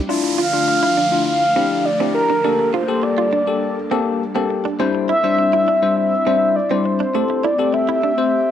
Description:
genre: pop.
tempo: 102 BPM.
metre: 4/4.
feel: straight.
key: D minor.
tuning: A4 = 439 Hz.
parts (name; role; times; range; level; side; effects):
airy breathy pad; sustained chords; 0.0-8.5 s; D3 to A4; -26 LUFS; equal; chorus, phaser, cassette tape.
direct-recorded clean electric guitar; riff; 0.0-8.1 s; A3 to F4; -25 LUFS; right 10 dB; wide subtle chorus, cassette tape.
bell-like tine electric piano; accompaniment; 0.1-8.5 s; G3 to C5; -21 LUFS; left 7 dB; lush chorus, cassette tape.
downlifter; sound effects; 0.1-4.8 s; none; -28 LUFS; right 3 dB; none.
mellow horn-like synth lead; melody; 0.4-8.5 s; Bb4 to F5; -17 LUFS; right 1 dB; chorus, cassette tape, tape echo.
room: moderate spring reverb, RT60 2.0 s, digital ambience.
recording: home recording on cassette.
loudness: -15 LUFS.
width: side -10 dB against mid.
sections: 0.1-8.5 A section.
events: tine electric piano fill 8.3.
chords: 0.1 Dmadd9; 2.4 Gmadd9; 4.8 Cadd9/G; 7.2 Am7.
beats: | 0.09 0.68 1.27 1.86 | 2.44 3.03 3.62 4.21 | 4.80 5.39 5.97 6.56 | 7.15 7.74 8.33.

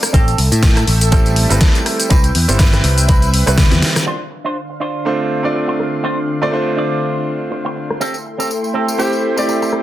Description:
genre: nu-disco, nu disco.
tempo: 122 BPM.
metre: 4/4.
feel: swing 56% on 16ths.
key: D dorian.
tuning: A4 = 444 Hz.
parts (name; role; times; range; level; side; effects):
clear concert grand piano; accompaniment; 0.0-9.8 s; F3 to D5; -19 LUFS; right 1 dB; sidechain pumping, slapback echo.
lush unison pad; sustained chords; 0.0-9.8 s; D3 to D6; -24 LUFS; left 1 dB; chorus, phaser, sidechain pumping.
pop drum kit; drums; 0.0-9.8 s; crash cymbal, hi-hat, rim click, shaker, snare drum, toms; -18 LUFS; left 1 dB; overdrive, low-pass filter on hats, low-pass filter on perc, low-pass filter on snare, low-pass filter on toms, low-pass filter on cymbals, low-pass filter on room.
tambourine; percussion; 0.0-4.1, 8.0-9.7 s; none; -28 LUFS; left 3 dB; none.
electric guitar with an envelope filter; riff; 0.1-9.8 s; C4 to D5; -23 LUFS; right 2 dB; wide subtle chorus, low-pass filter, slapback echo.
picked electric bass; bass; 0.1-3.8 s; G1 to A2; -14 LUFS; equal; none.
electronic kick drum; drums; 0.1-3.7 s; none; -12 LUFS; equal; overdrive.
clear tenor saxophone; melody; 9.0-9.1 s; G4; -24 LUFS; equal; tape echo.
room: light reverb.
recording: dense, heavily limited modern master.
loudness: -13 LUFS.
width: side -13 dB against mid.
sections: 0.0-4.1 A section; 4.1-9.8 B section.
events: drum fill 3.6-4.1; filter sweep on analog synth pad 4.1-9.8.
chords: 0.1 Am7; 2.1 Cmaj7; 4.1 Dm7; 8.0 Am7.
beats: | 0.14 0.63 1.12 1.61 | 2.11 2.60 3.09 3.58 | 4.07 4.57 5.06 5.55 | 6.04 6.53 7.03 7.52 | 8.01 8.50 8.99 9.48.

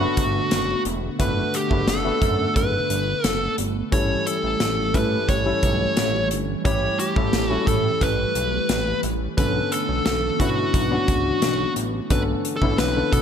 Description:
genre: 1980s-style pop.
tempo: 88 BPM.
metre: 4/4.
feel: straight.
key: A mixolydian.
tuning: A4 = 440 Hz.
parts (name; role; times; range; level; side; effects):
dark smooth lead guitar; melody; 0.0-13.2 s; F#4 to C#5; -24 LUFS; equal; overdrive, ping-pong delay.
warm grand piano; accompaniment; 0.0-13.2 s; D3 to C#5; -27 LUFS; left 4 dB; none.
string machine, cellos; sustained chords; 0.0-13.2 s; D3 to F#5; -30 LUFS; right 1 dB; ensemble chorus.
chorused synth bass; bass; 0.0-13.2 s; E1 to B2; -27 LUFS; right 1 dB; none.
modern studio drum kit; drums; 0.2-13.2 s; hi-hat, kick drum, snare drum; -24 LUFS; equal; gated reverb.
room: moderate plate reverb, RT60 1.3 s, studio reverb.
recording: bright 1980s-style digital production.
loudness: -19 LUFS.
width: side -8 dB against mid.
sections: 0.0-13.2 A section.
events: none.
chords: 0.0 Gmaj7; 3.9 A7; 9.4 Bm9.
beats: 0.52 | 1.20 1.88 2.56 3.24 | 3.92 4.61 5.29 5.97 | 6.65 7.33 8.02 8.70 | 9.38 10.06 10.74 11.43 | 12.11 12.79.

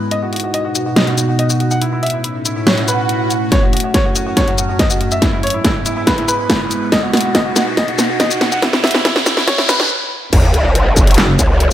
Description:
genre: heavy wobble dubstep.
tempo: 141 BPM.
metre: 4/4.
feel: half-time.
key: unclear.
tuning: A4 = 439 Hz.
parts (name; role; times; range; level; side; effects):
clear grand piano; melody; 0.0-9.9 s; E4 to F#5; -20 LUFS; equal; digital delay.
evolving wavetable pad; sustained chords; 0.0-11.7 s; F#2 to C#5; -21 LUFS; right 1 dB; phaser, built-in reverb, sidechain pumping.
downlifter, swell, riser and sub drop; sound effects; 0.0-11.7 s; none; -21 LUFS; right 1 dB; none.
dubstep drum kit; drums; 0.1-11.7 s; crash cymbal, handclaps, hi-hat, shaker, snare drum; -16 LUFS; equal; none.
electronic kick drum; drums; 3.5-11.5 s; none; -16 LUFS; equal; distortion.
growl bass; bass; 10.3-11.7 s; F#1 to C#2; -13 LUFS; equal; chorus, overdrive.
metallic wobble bass; bass; 11.2-11.4 s; F#1; -13 LUFS; equal; chorus, overdrive.
room: light reverb, digital ambience.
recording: high-pass filter.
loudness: -12 LUFS.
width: side -12 dB against mid.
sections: 0.0-3.5 A section; 3.5-10.3 B section; 10.3-11.7 C section.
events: filter sweep on drum 0.0-3.5; filter sweep on ambient pad 0.0-3.5; swell 2.8-3.5; build-up 3.5-10.3; drum fill 3.5-9.9; riser 3.5-9.9; filter sweep 3.5-10.3; stop 9.9-10.3; drop 10.3-11.7; impact 10.3-11.7.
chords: 0.1 B; 1.8 A; 3.5 F#m; 5.2 E/G#; 6.9 B; 8.6 A; 10.3 F#m.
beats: | 0.11 0.54 0.96 1.39 | 1.82 2.24 2.67 3.09 | 3.52 3.94 4.37 4.79 | 5.22 5.65 6.07 6.50 | 6.92 7.35 7.77 8.20 | 8.62 9.05 9.48 9.90 | 10.33 10.75 11.18 11.60.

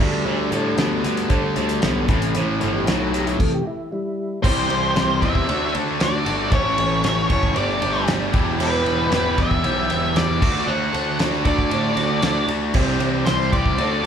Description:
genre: classic rock.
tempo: 115 BPM.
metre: 4/4.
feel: straight.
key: unclear.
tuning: A4 = 440 Hz.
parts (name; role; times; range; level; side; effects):
mellow tonewheel organ; sustained chords; 0.0-14.1 s; C3 to E5; -29 LUFS; equal; overdrive, chorus vibrato, slow rotary speaker.
cranked stack guitar; riff; 0.0-14.1 s; E2 to A4; -25 LUFS; left 7 dB; overdrive.
cranked stack guitar; riff; 0.0-14.1 s; A2 to G4; -26 LUFS; right 7 dB; overdrive.
fuzz picked electric bass; bass; 0.0-14.1 s; E1 to D3; -25 LUFS; right 1 dB; overdrive.
cowbell; percussion; 0.3-14.1 s; none; -33 LUFS; right 4 dB; none.
damped 70s drum kit; drums; 0.5-13.9 s; crash cymbal, hi-hat, kick drum, ride cymbal, snare drum; -24 LUFS; equal; none.
octave-fuzz lead guitar; melody; 4.4-14.1 s; B4 to F#5; -24 LUFS; equal; distortion, tape echo.
room: moderate large studio reverb, RT60 1.4 s.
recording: band playing live in one room.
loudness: -18 LUFS.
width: side -8 dB against mid.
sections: 0.0-4.4 A section; 4.4-14.1 B section.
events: tonewheel organ solo 0.0-4.4; stop 3.4-4.4.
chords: 0.0 Dsus4; 2.1 Am; 4.4 C; 5.5 D; 6.5 A6; 7.6 Gsus2; 8.3 Em; 10.4 D; 12.7 C.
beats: | 0.26 0.78 1.30 1.83 | 2.35 2.87 3.39 3.91 | 4.43 4.96 5.48 6.00 | 6.52 7.04 7.56 8.08 | 8.60 9.12 9.64 10.15 | 10.67 11.19 11.71 12.23 | 12.75 13.27 13.79.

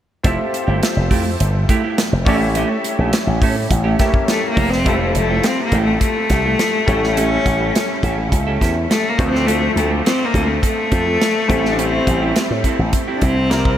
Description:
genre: polished 1980s jazz-funk pop.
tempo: 104 BPM.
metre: 4/4.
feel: straight.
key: F major.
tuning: A4 = 440 Hz.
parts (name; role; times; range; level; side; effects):
bright grand piano; accompaniment; 0.2-13.8 s; E3 to E5; -23 LUFS; left 2 dB; ensemble chorus.
semi-hollow electric guitar; riff; 0.2-13.7 s; A3 to A4; -24 LUFS; right 4 dB; wide subtle chorus.
slap bass with an envelope filter; bass; 0.2-13.8 s; F1 to A2; -19 LUFS; equal; none.
modern studio drum kit; drums; 0.2-13.8 s; hi-hat, kick drum, snare drum; -20 LUFS; equal; none.
clear cello; melody; 4.3-13.8 s; A3 to D4; -19 LUFS; left 2 dB; tape echo.
room: moderate huge ambient reverb, RT60 7.6 s.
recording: dreamy mix soaked in reverb.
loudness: -14 LUFS.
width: side -11 dB against mid.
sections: 0.2-4.9 A section; 4.9-13.8 B section.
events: none.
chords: 0.2 Fmaj9; 2.3 A7; 4.6 Fmaj9; 6.9 A7; 9.2 Dm7; 11.5 Am7.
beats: | 0.24 0.82 1.40 1.98 | 2.55 3.13 3.71 4.28 | 4.86 5.43 6.01 6.59 | 7.17 7.74 8.32 8.90 | 9.47 10.05 10.63 11.20 | 11.78 12.36 12.93 13.51.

